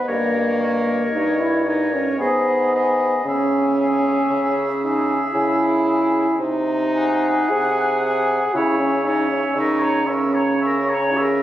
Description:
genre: classical, slow romantic movement for wind quintet.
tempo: 57 BPM.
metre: 3/4.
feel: uneven beats, rubato.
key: unclear.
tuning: A4 = 440 Hz.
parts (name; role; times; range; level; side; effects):
mellow hollow concert flute; melody; 0.0-11.4 s; D#5 to C#6; -25 LUFS; left 4 dB; none.
clear oboe; second line; 0.0-11.4 s; C#5 to F#5; -27 LUFS; left 1 dB; none.
bright clarinet; accompaniment; 0.0-11.4 s; G#4 to C#5; -27 LUFS; right 4 dB; none.
warm French horn; accompaniment; 0.0-11.4 s; A#3 to G#4; -21 LUFS; equal; none.
mellow bassoon; bass; 0.1-11.4 s; G2 to C#3; -22 LUFS; right 1 dB; none.
room: wet recital hall reverb, RT60 1.4 s.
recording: recorded on a phone in the room, club reverb.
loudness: -17 LUFS.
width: side -12 dB against mid.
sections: 0.0-11.4 A section.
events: none.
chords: 0.1 D#7/G; 2.2 G#m; 3.3 C#m; 6.4 G#7/B#; 8.5 C#m; 9.6 A#dim/C#.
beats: | 0.09 1.15 2.20 | 3.25 4.30 5.35 | 6.39 7.51 8.54 | 9.56 10.62.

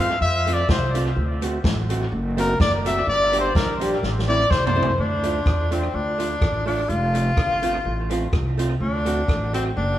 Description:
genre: ska.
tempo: 126 BPM.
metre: 4/4.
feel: swing 53% on 8ths.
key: D minor.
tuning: A4 = 439 Hz.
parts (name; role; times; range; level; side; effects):
bright trumpet; melody; 0.0-5.0 s; Bb4 to F5; -23 LUFS; left 1 dB; dub echo.
archtop guitar, miked and amplified; accompaniment; 0.0-9.7 s; A3 to G4; -28 LUFS; right 3 dB; dub echo.
upright bass; bass; 0.0-10.0 s; F1 to G2; -24 LUFS; equal; none.
swinging big-band drum kit; drums; 0.5-9.6 s; hi-hat, kick drum, rim click, snare drum, toms; -24 LUFS; equal; dub echo.
breathy tenor saxophone; melody; 5.0-10.0 s; C4 to F4; -25 LUFS; left 2 dB; none.
room: wet large studio reverb, RT60 1.3 s.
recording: band playing live in one room, vinyl crackle.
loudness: -19 LUFS.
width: side -13 dB against mid.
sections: 0.0-5.0 A section; 5.0-10.0 B section.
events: trumpet solo 0.0-5.0; drum fill 4.0-5.0.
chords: 0.0 F; 1.2 D7; 3.1 Gm; 4.0 Am; 5.0 Dm; 6.9 F; 8.8 D7.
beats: 0.21 0.69 | 1.17 1.64 2.12 2.60 | 3.08 3.55 4.03 4.51 | 4.99 5.46 5.94 6.42 | 6.89 7.37 7.85 8.33 | 8.80 9.28 9.76.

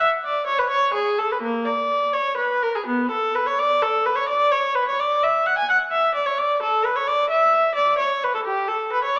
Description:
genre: classical, baroque-style suite movement for unaccompanied viola.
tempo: 86 BPM (dotted quarters).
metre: 12/8.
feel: rubato.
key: D major from 5.7 s.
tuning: A4 = 440 Hz.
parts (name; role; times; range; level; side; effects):
rich viola; solo; 0.0-9.2 s; Bb3 to G#5; -18 LUFS; equal; none.
room: wet recital hall reverb, RT60 1.7 s.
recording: small speaker sound.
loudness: -18 LUFS.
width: side -27 dB against mid.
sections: 0.0-9.2 A section.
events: none.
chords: none.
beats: | 0.01 0.71 1.43 2.15 | 2.88 3.59 4.28 4.99 | 5.69 6.39 7.08 7.77 | 8.47 9.16.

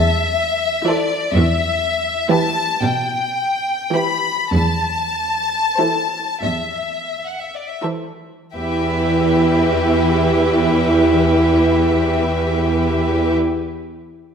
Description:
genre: classical, slow romantic movement for string orchestra.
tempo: 26-44 BPM (dotted quarters).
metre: 6/8.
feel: rubato.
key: E minor.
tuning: A4 = 440 Hz.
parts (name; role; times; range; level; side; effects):
clear chamber violin section; melody; 0.0-13.3 s; D5 to B5; -21 LUFS; left 4 dB; none.
clear studio cello section; bass; 0.0-13.4 s; E2 to B2; -20 LUFS; right 2 dB; none.
clear chamber violin section; second line; 0.9-13.4 s; G4 to C5; -22 LUFS; equal; none.
rich chamber viola section; accompaniment; 0.9-13.4 s; E3 to E4; -18 LUFS; right 2 dB; none.
room: wet scoring stage reverb, RT60 1.7 s.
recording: none.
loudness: -15 LUFS.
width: side -7 dB against mid.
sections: 0.0-8.6 A section; 8.6-12.7 B section.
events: slowing down 0.0-8.6.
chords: 0.0 Am/E; 1.3 Em; 4.5 Am/E.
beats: | 1.33 2.82 | 4.54 6.43 | 8.57 10.66.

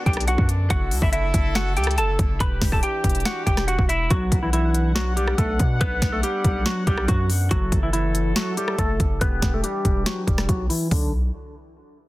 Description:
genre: hip hop, trap.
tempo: 141 BPM.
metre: 4/4.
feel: half-time.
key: B minor.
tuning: A4 = 440 Hz.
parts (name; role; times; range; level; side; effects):
semi-hollow electric guitar; melody; 0.0-11.1 s; D3 to B5; -25 LUFS; equal; low-pass filter.
clear brass ensemble; sustained chords; 0.0-11.1 s; B2 to F#5; -32 LUFS; left 2 dB; low-pass filter.
hard-hitting 808-style bass; bass; 0.1-11.3 s; E1 to B2; -23 LUFS; equal; none.
trap drum kit; drums; 0.1-11.0 s; hi-hat, kick drum, rim click, snare drum, toms; -23 LUFS; equal; none.
room: little or no reverb.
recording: dense, heavily limited modern master.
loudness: -19 LUFS.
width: side -18 dB against mid.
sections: 0.0-4.1 A section; 4.1-10.9 B section; 10.9-12.1 C section.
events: filter sweep 4.1-10.9.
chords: 0.0 Bm; 0.7 F#m7; 2.4 Em7; 4.1 Bm; 7.5 F#m7; 9.2 Em7; 10.9 Bm.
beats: 0.28 | 0.70 1.13 1.55 1.98 | 2.40 2.83 3.25 3.68 | 4.11 4.53 4.96 5.38 | 5.81 6.23 6.66 7.08 | 7.51 7.93 8.36 8.79 | 9.21 9.64 10.06 10.49 | 10.91.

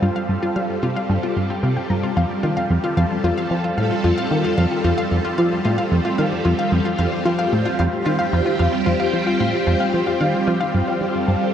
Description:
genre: ambient, sequencer-driven space music.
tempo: 112 BPM.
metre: 4/4.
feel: straight.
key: unclear.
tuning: A4 = 440 Hz.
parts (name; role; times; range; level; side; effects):
phased string machine; sustained chords; 0.0-11.5 s; G3 to A4; -22 LUFS; equal; ensemble chorus, phaser, shimmer reverb.
wide unison pluck; arpeggios; 0.0-10.7 s; F4 to Bb5; -24 LUFS; left 2 dB; auto-pan, ping-pong delay, shimmer reverb.
plucky analog bass; riff; 0.0-11.4 s; F2 to G3; -21 LUFS; equal; lush chorus, ping-pong delay.
room: wet huge ambient reverb, RT60 8.4 s.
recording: worn, warbling old tape, cassette tape, warbly pitch drift.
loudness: -17 LUFS.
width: side -9 dB against mid.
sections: 0.0-10.7 A section.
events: filter sweep on analog synth bass 0.0-10.7.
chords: 0.0 G7(no3); 2.2 F7; 10.7 G9sus4.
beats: | 0.03 0.56 1.10 1.63 | 2.17 2.70 3.24 3.77 | 4.31 4.85 5.38 5.92 | 6.45 6.99 7.53 8.06 | 8.60 9.13 9.67 10.20 | 10.74 11.28.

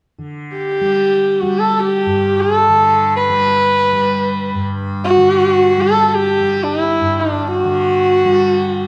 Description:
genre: indian classical, Hindustani.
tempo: free time.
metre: none.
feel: none.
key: G raga yaman.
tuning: A4 = 440 Hz.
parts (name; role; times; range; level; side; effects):
tanpura; drone; 0.2-8.9 s; G2 to G3; -23 LUFS; equal; none.
warm sarangi; melody; 0.6-8.9 s; D4 to B4; -15 LUFS; equal; none.
room: moderate recital hall reverb, RT60 1.6 s.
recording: dark, warm production.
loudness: -15 LUFS.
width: mono.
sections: 0.2-8.9 A section.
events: none.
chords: none.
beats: free time.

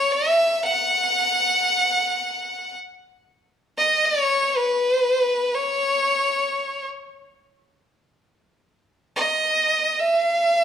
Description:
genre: indian classical.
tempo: free time.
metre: none.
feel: none.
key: C# raga bhimpalasi.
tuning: A4 = 439 Hz.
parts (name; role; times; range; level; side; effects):
clear violin; solo; 0.0-10.6 s; B4 to F#5; -19 LUFS; equal; none.
room: moderate recital hall reverb, RT60 1.4 s.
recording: studio reverb.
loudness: -19 LUFS.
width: side -9 dB against mid.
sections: 0.0-8.6 A section; 8.6-10.6 A section.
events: none.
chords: none.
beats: free time.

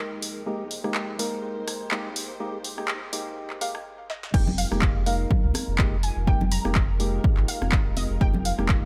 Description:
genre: deep house.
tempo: 124 BPM.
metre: 4/4.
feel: swing 56% on 16ths.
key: F minor.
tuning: A4 = 442 Hz.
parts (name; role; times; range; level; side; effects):
soft string machine; sustained chords; 0.0-8.9 s; Ab3 to C5; -42 LUFS; equal; ensemble chorus, vintage 12-bit sampler grit, sidechain pumping.
percussive organ stab; stabs; 0.0-8.9 s; Ab3 to Bb4; -35 LUFS; equal; chorus, sidechain pumping, delay.
warm sub bass; bass; 0.0-8.9 s; Eb1 to C2; -30 LUFS; equal; tube saturation, sidechain pumping, high-pass filter.
punchy analog drum machine; drums; 0.2-8.8 s; crash cymbal, handclaps, hi-hat, rim click, snare drum; -33 LUFS; equal; high-pass filter on snare, high-pass filter on hats, high-pass filter on cymbals.
soft round pluck; melody; 3.6-8.9 s; Eb5 to Bb5; -36 LUFS; equal; ensemble chorus, delay.
electronic kick drum; drums; 4.3-8.8 s; none; -25 LUFS; equal; none.
congas; percussion; 4.5-8.7 s; none; -34 LUFS; equal; none.
room: light reverb.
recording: high-pass filter, faint mains hum.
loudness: -25 LUFS.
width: mono.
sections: 0.0-4.3 A section; 4.3-8.9 B section.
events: build-up 0.0-4.3; filter sweep on synth stab 0.0-4.3; stop 3.9-4.3; drum fill 4.1; drop 4.3-8.9.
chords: 0.0 Fm11.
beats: | 0.47 0.95 1.44 1.92 | 2.40 2.89 3.37 3.85 | 4.34 4.82 5.31 5.79 | 6.27 6.76 7.24 7.73 | 8.21 8.69.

